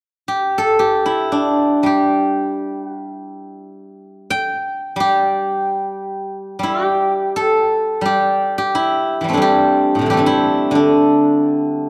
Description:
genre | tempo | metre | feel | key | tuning
chinese traditional, Chinese solo plucked strings | free time | none | none | G zhi mode | A4 = 439 Hz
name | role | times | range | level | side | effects
steel-string zither | solo | 0.3-11.9 s | A2 to G5 | -17 LUFS | equal | none
room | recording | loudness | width
wet recital hall reverb, RT60 1.5 s | dark, warm production | -17 LUFS | mono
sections
0.0-6.6 A section; 6.6-11.9 B section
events
none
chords
none

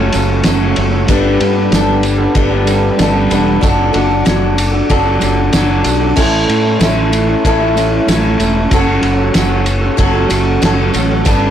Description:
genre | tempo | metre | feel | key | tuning
folk rock and heartland rock | 94 BPM | 4/4 | straight | unclear | A4 = 440 Hz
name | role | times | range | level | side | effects
picked old ladder-braced acoustic guitar | accompaniment | 0.0-11.5 s | A2 to A4 | -16 LUFS | left 3 dB | none
mellow tonewheel organ | sustained chords | 0.0-11.5 s | A4 to D6 | -26 LUFS | right 1 dB | slow rotary speaker
electric guitar through a small old amp | riff | 0.0-11.5 s | F#2 to A4 | -17 LUFS | right 3 dB | analog chorus
modern bright fingered electric bass | bass | 0.0-11.5 s | E1 to A2 | -16 LUFS | equal | none
cloth-damped thuddy drum kit | drums | 0.1-11.4 s | crash cymbal, kick drum, ride cymbal, snare drum | -16 LUFS | equal | none
tambourine | percussion | 0.1-11.4 s | none | -29 LUFS | right 8 dB | none
room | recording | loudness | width
light reverb | blown-out, overdriven recording, overdrive | -10 LUFS | side -10 dB against mid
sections
0.0-11.5 A section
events
none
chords
0.0 F#m; 1.1 Gadd9; 3.6 D/F#; 6.2 A; 8.7 F#m

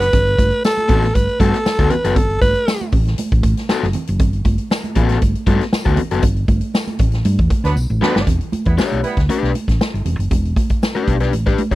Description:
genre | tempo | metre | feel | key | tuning
funk | 118 BPM | 4/4 | straight | unclear | A4 = 440 Hz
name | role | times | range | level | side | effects
raspy alto saxophone | melody | 0.0-2.9 s | A4 to B4 | -18 LUFS | right 1 dB | none
mellow horn section | second line | 0.0, 7.6-9.2 s | F#3 to B4 | -22 LUFS | right 4 dB | none
hollow-body short-scale fingered electric bass | bass | 0.0-11.5 s | E1 to G2 | -18 LUFS | equal | none
swinging big-band drum kit | drums | 0.0-11.8 s | hi-hat, kick drum, snare drum | -18 LUFS | equal | none
congas | percussion | 0.1-11.7 s | none | -25 LUFS | right 4 dB | none
tambourine | percussion | 0.6-11.0 s | none | -37 LUFS | left 6 dB | none
crunchy overdriven guitar | accompaniment | 0.9-11.8 s | B3 to C#5 | -20 LUFS | left 6 dB | none
room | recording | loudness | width
little or no reverb | dry, close 1970s-style studio recording | -14 LUFS | side -17 dB against mid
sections
0.0-8.3 A section; 8.3-11.8 B section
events
band accent 6.2-8.3; drum fill 7.8-8.3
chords
0.0 Gmaj9; 8.3 Em7

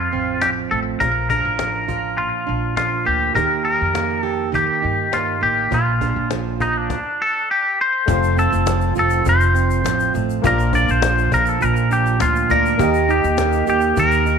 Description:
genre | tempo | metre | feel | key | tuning
acoustic pop | 102 BPM | 4/4 | straight | F mixolydian | A4 = 440 Hz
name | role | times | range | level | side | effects
twangy electric guitar | melody | 0.0-14.4 s | D4 to D5 | -19 LUFS | left 2 dB | slapback echo
fingerpicked plugged-in steel-string acoustic guitar | accompaniment | 0.0-14.4 s | F2 to G4 | -22 LUFS | right 11 dB | none
upright bass | bass | 0.1-14.4 s | F1 to G2 | -22 LUFS | left 2 dB | none
cajon | drums | 0.4-14.3 s | none | -27 LUFS | left 8 dB | none
clear upright piano | accompaniment | 8.1-14.4 s | A3 to Eb5 | -27 LUFS | left 14 dB | none
egg shaker | percussion | 8.1-14.4 s | none | -42 LUFS | left 21 dB | none
room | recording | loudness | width
moderate plate reverb, RT60 2.3 s | 1960s-style stereo with parts hard left and right | -16 LUFS | side -6 dB against mid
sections
0.0-8.1 A section; 8.1-14.4 B section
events
none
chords
0.0 F; 1.0 Bb; 3.4 Eb; 5.7 Bb; 6.9 N.C.; 8.1 F; 10.4 Bb; 12.8 Eb

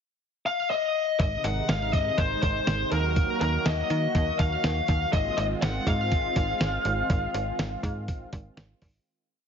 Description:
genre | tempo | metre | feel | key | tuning
synth-pop | 122 BPM | 4/4 | straight | unclear | A4 = 443 Hz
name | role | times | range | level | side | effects
smooth overdriven lead guitar | melody | 0.5-8.5 s | Bb4 to Gb5 | -27 LUFS | left 3 dB | none
lush unison pad | sustained chords | 1.2-9.0 s | C3 to Gb4 | -34 LUFS | right 4 dB | chorus
slap-like FM bass | bass | 1.2-9.0 s | Ab1 to Eb3 | -29 LUFS | right 1 dB | none
dusty soul sampler-style drum kit | drums | 1.2-8.9 s | hi-hat, kick drum, snare drum | -28 LUFS | right 1 dB | none
room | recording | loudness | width
light reverb | heavily compressed radio sound, multiband compression, nothing above 7.5 kHz | -24 LUFS | side -7 dB against mid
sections
0.0-1.2 pickup bar; 1.2-9.1 pre-chorus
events
fade-out 7.1-9.1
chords
0.0 N.C.; 1.2 Ab; 2.9 Ebm; 5.1 Ab6

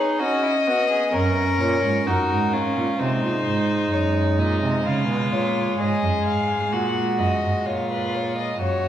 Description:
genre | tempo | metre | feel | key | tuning
classical, baroque-style fugue for string quartet | 64 BPM | 4/4 | straight | unclear | A4 = 440 Hz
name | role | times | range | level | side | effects
dark violin | melody | 0.0-8.9 s | A#4 to F#5 | -26 LUFS | left 4 dB | none
rich violin | second line | 0.0-8.9 s | D#4 to A#4 | -26 LUFS | equal | none
rich viola | accompaniment | 0.0-8.6 s | G#3 to D#4 | -26 LUFS | right 2 dB | none
warm cello | bass | 1.1-8.9 s | F#2 to C#3 | -24 LUFS | right 2 dB | none
room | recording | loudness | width
wet recital hall reverb, RT60 1.8 s | heard from further back in the room | -19 LUFS | side -10 dB against mid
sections
0.0-8.6 A section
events
none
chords
0.0 B; 1.1 F#; 3.0 G#7; 4.9 F#

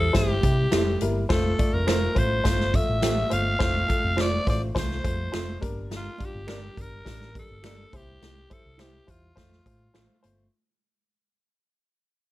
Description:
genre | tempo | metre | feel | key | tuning
uptempo 1960s-style soul | 104 BPM | 4/4 | straight | F major | A4 = 441 Hz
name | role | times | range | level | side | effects
raspy alto saxophone | melody | 0.0-10.2 s | F4 to F5 | -28 LUFS | left 1 dB | none
warm upright piano | accompaniment | 0.0-10.4 s | G3 to D5 | -31 LUFS | left 2 dB | none
hollow-body short-scale picked electric bass | bass | 0.0-10.5 s | F1 to C3 | -28 LUFS | equal | none
swinging big-band drum kit | drums | 0.1-10.4 s | hi-hat, kick drum, snare drum | -27 LUFS | equal | none
congas | percussion | 0.2-10.4 s | none | -38 LUFS | right 4 dB | none
mellow electric guitar | stabs | 0.7-10.0 s | E4 to D5 | -31 LUFS | right 6 dB | slapback echo
finger snaps | percussion | 0.7-10.1 s | none | -38 LUFS | right 4 dB | none
room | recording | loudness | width
light reverb | none | -22 LUFS | side -16 dB against mid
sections
0.0-10.5 A section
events
fade-out 0.0-10.5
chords
0.0 C; 1.3 F; 5.6 Gm; 7.9 C; 9.4 F

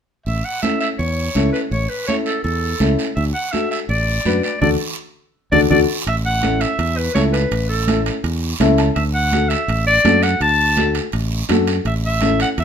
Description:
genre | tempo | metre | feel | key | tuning
latin, cumbia | 166 BPM | 4/4 | straight | unclear | A4 = 440 Hz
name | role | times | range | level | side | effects
breathy clarinet | melody | 0.3-12.6 s | A4 to A5 | -20 LUFS | equal | none
modern bright fingered electric bass | bass | 0.3-12.6 s | A1 to F#2 | -20 LUFS | equal | none
congas | percussion | 0.3-12.6 s | none | -24 LUFS | right 5 dB | none
guiro | percussion | 0.3-12.6 s | none | -28 LUFS | right 6 dB | none
dark upright piano | accompaniment | 0.6-12.5 s | C#4 to A5 | -20 LUFS | left 4 dB | none
timbales | percussion | 6.1-12.6 s | none | -26 LUFS | right 5 dB | none
room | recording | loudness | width
light reverb | minimal, uncompressed stereo recording | -15 LUFS | side -8 dB against mid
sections
0.3-6.1 A section; 6.1-12.6 B section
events
band accent 4.6-6.1; drum fill 5.5-6.1; upright piano fill 8.4-9.0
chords
0.3 A; 3.2 D; 6.1 A; 9.0 D; 11.9 A

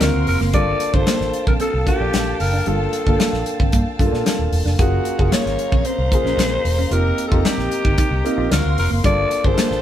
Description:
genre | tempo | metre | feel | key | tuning
polished 1980s jazz-funk pop | 113 BPM | 4/4 | straight | unclear | A4 = 440 Hz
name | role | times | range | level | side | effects
breathy alto saxophone | melody | 0.0-9.8 s | Gb4 to D5 | -22 LUFS | left 1 dB | none
dark concert grand piano | accompaniment | 0.0-9.8 s | A3 to Bb4 | -23 LUFS | left 1 dB | none
warm studio string section | sustained chords | 0.0-9.8 s | Gb3 to C6 | -31 LUFS | right 1 dB | none
mellow electric guitar | riff | 0.0-9.7 s | G3 to Gb4 | -28 LUFS | right 3 dB | none
vintage muted fingered electric bass | bass | 0.0-9.8 s | Eb1 to Bb2 | -22 LUFS | equal | none
modern studio drum kit | drums | 0.0-9.8 s | hi-hat, kick drum, snare drum | -20 LUFS | equal | none
room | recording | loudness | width
light reverb | band playing live in one room | -16 LUFS | side -11 dB against mid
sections
0.0-9.8 A section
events
none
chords
0.0 D7alt; 0.5 Gm9; 4.8 Gbmaj7; 6.9 F9sus4; 8.5 D7alt; 9.0 Gm9

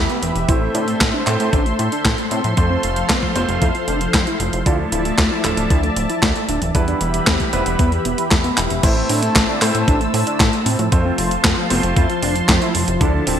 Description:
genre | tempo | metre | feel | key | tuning
italo disco | 115 BPM | 4/4 | straight | A minor | A4 = 440 Hz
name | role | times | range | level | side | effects
wide unison lead | melody | 0.0-13.4 s | D3 to F4 | -23 LUFS | equal | digital delay
lush unison pad | sustained chords | 0.0-13.4 s | D3 to E6 | -23 LUFS | equal | chorus, phaser, shimmer reverb
chorused synth bass | bass | 0.0-13.4 s | D1 to A2 | -22 LUFS | equal | none
clean 12-bit digital drum machine | drums | 0.1-13.4 s | crash cymbal, handclaps, hi-hat, snare drum | -20 LUFS | equal | gated reverb
clear baby grand piano | stabs | 0.5-13.4 s | F3 to C5 | -26 LUFS | right 2 dB | shimmer reverb
electronic kick drum | drums | 0.5-13.1 s | none | -19 LUFS | equal | none
room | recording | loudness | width
moderate lush hall reverb, RT60 1.7 s, digital ambience | bright 1980s-style digital production | -15 LUFS | side -9 dB against mid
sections
0.0-8.8 A section; 8.8-13.4 B section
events
drum fill 8.6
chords
0.5 Am; 2.6 F; 4.7 Dmadd9; 6.7 Em; 8.8 Am; 10.9 F

